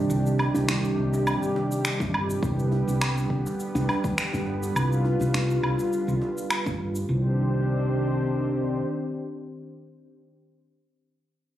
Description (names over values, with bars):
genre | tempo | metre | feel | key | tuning
organic downtempo | 103 BPM | 4/4 | swing 54% on 16ths | C harmonic minor | A4 = 440 Hz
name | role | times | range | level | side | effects
warm analog pad | sustained chords | 0.0-10.2 s | C3 to C5 | -27 LUFS | equal | wide subtle chorus, sidechain pumping
woody fretless electric bass | bass | 0.0-8.8 s | G1 to C2 | -26 LUFS | equal | lush chorus, sidechain pumping
electronic shaker, woodblock and finger snaps | drums | 0.1-7.1 s | none | -29 LUFS | equal | none
djembe | percussion | 0.4-7.1 s | none | -33 LUFS | equal | none
electronic kick drum | drums | 2.0-6.8 s | none | -30 LUFS | equal | none
room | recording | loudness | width
moderate digital room reverb, RT60 1.1 s, digital ambience | recorded on a phone in the room, studio reverb | -23 LUFS | side -12 dB against mid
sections
0.0-7.1 A section; 7.1-9.4 B section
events
none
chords
0.0 Cmadd9; 2.4 G; 7.1 Cmadd9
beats
| 0.10 0.68 1.26 1.84 | 2.42 3.01 3.59 4.17 | 4.76 5.34 5.92 6.50 | 7.09 7.67 8.25 8.83